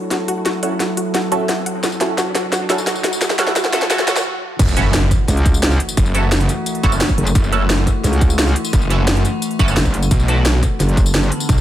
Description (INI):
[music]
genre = dark technical drum and bass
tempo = 174 BPM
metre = 4/4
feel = straight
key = F# minor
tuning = A4 = 441 Hz
[part]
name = metallic inharmonic drone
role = sustained chords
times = 0.0-11.6 s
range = D3 to A4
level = -24 LUFS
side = left 1 dB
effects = chorus, built-in reverb, sidechain pumping
[part]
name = riser and impact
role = sound effects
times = 1.3-6.0 s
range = none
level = -26 LUFS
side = equal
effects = none
[part]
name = wide unison pluck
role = arpeggios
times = 0.1-4.2 s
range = F#4 to F#5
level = -24 LUFS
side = left 2 dB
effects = sidechain pumping, dub echo
[part]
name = drum and bass drum kit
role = drums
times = 0.1-11.6 s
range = crash cymbal, hi-hat, rim click, snare drum, tambourine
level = -20 LUFS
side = equal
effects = studio reverb
[part]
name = band-passed chord stab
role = stabs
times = 0.6-10.4 s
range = C#4 to D5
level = -23 LUFS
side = right 3 dB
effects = phaser, analog chorus, dub echo
[part]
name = snarling distorted saw bass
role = bass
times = 4.6-11.6 s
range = F#1 to B1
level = -17 LUFS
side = equal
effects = distortion, overdrive
[part]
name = electronic kick drum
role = drums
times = 4.6-11.6 s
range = none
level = -16 LUFS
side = equal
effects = studio reverb
[part]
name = metallic wobble bass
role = bass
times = 5.3-11.3 s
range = F#1 to C#2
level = -16 LUFS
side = equal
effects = distortion, chorus, tube saturation
[sound]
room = light reverb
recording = high-pass filter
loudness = -14 LUFS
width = side -12 dB against mid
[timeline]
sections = 0.0-4.6 A section; 4.6-11.6 B section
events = build-up 0.0-4.6; drum fill 0.0-4.2; filter sweep on synth drone 0.0-4.6; filter sweep on synth stab 0.0-4.6; filter sweep 0.0-4.6; riser 1.3-4.2; stop 4.2-4.6; drop 4.6-11.6; impact 4.6-6.0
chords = 0.0 F#m7; 10.1 Bm7